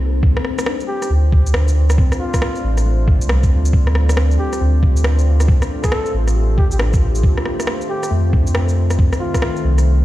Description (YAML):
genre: future garage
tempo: 137 BPM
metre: 4/4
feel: swing 64% on 16ths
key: D phrygian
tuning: A4 = 440 Hz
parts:
  - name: tine electric piano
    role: accompaniment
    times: 0.0-10.0 s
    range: G3 to G4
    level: -28 LUFS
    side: left 2 dB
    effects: sidechain pumping, tape echo
  - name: deep dark ambient pad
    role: sustained chords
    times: 0.0-10.0 s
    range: Eb3 to C5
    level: -26 LUFS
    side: left 1 dB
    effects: chorus, built-in reverb, sidechain pumping
  - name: warm sub bass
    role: bass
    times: 0.0-10.0 s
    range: A1 to F2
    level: -14 LUFS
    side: equal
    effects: sidechain pumping
  - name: electronic kick drum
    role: drums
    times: 0.2-9.4 s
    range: none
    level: -15 LUFS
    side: equal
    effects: none
  - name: electronic rim click and shaker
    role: drums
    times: 0.4-9.8 s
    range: none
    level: -24 LUFS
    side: equal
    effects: overdrive
  - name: trumpet with bucket mute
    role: melody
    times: 0.9-9.8 s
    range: F4 to A4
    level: -28 LUFS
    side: equal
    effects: vintage 12-bit sampler grit, dub echo
room: digital ambience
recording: played on a big sound system in a bare room, stone room reverb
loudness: -14 LUFS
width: side -15 dB against mid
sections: 0.2-10.0 A section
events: none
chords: 0.2 Dm7; 7.2 F7